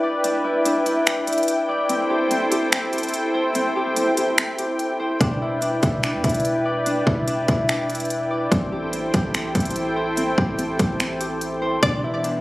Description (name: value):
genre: hip hop, atmospheric cloud-rap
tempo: 145 BPM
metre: 4/4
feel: half-time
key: E minor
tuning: A4 = 439 Hz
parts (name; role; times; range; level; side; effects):
- warm analog pad; sustained chords; 0.0-12.4 s; E3 to G5; -24 LUFS; equal; chorus, sidechain pumping
- Celtic harp; arpeggios; 0.0-12.4 s; C4 to D5; -24 LUFS; left 1 dB; digital delay
- trap drum kit; drums; 0.2-12.3 s; finger snaps, hi-hat, kick drum; -22 LUFS; equal; none
- warm 808-style bass; bass; 5.2-12.4 s; E1 to E2; -28 LUFS; equal; none
- string-like resonator pluck; melody; 11.8-12.4 s; D5; -23 LUFS; equal; chorus, digital delay
room: little or no reverb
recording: recorded on a phone in the room, studio reverb, compression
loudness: -19 LUFS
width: side -18 dB against mid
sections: 0.0-11.8 A section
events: break 0.0-5.2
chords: 0.0 Em7; 1.9 Am7; 5.2 Em7; 8.5 Am7; 11.8 Em7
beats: | 0.24 0.65 1.07 1.48 | 1.90 2.31 2.72 3.14 | 3.55 3.96 4.38 4.79 | 5.21 5.62 6.03 6.45 | 6.86 7.28 7.69 8.10 | 8.52 8.93 9.34 9.76 | 10.17 10.59 11.00 11.41 | 11.83 12.24